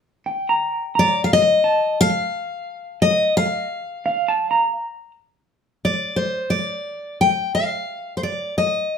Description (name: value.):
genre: acoustic folk-pop ballad.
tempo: 58 BPM (dotted quarters).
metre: 6/8.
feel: straight.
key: unclear.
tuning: A4 = 439 Hz.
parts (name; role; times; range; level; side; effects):
clean electric guitar; arpeggios; 0.3-5.1 s; Eb5 to Bb5; -21 LUFS; right 3 dB; harmonic tremolo.
picked steel-string acoustic guitar; melody; 1.0-9.0 s; C5 to G5; -19 LUFS; left 2 dB; slapback echo.
room: wet small room reverb, RT60 0.6 s.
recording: heard from further back in the room.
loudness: -18 LUFS.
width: side -7 dB against mid.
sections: 0.0-5.5 A section; 5.5-9.0 B section.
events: none.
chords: 0.0 Gm; 1.3 F7/Eb; 3.4 Ebsus2; 4.4 N.C..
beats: 0.26 | 1.30 2.33 | 3.37 4.41 | 5.45 6.49 | 7.53 8.57.